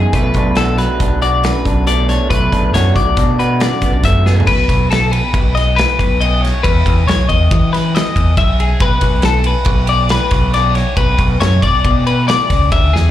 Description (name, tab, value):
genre	math rock and midwest emo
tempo	138 BPM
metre	5/4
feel	straight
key	unclear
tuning	A4 = 439 Hz
part	electric guitar through a small old amp	accompaniment	0.0-6.6 s	E2 to G#4	-21 LUFS	right 4 dB	slapback echo
part	twelve-string electric guitar	arpeggios	0.0-13.1 s	G#4 to E5	-17 LUFS	left 6 dB	slapback echo
part	overdriven picked electric bass	bass	0.0-13.1 s	B1 to E3	-14 LUFS	equal	none
part	loose indie drum kit	drums	0.1-13.0 s	crash cymbal, hi-hat, kick drum, ride cymbal, snare drum, toms	-17 LUFS	equal	none
room	studio reverb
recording	live gig heard through the venue's PA, club reverb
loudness	-11 LUFS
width	side -12 dB against mid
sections	0.0-4.5 A section; 4.5-13.1 B section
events	drum fill 4.3, 12.9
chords	0.1 Bm7; 4.5 B; 6.6 Emaj7(no3); 8.8 Bm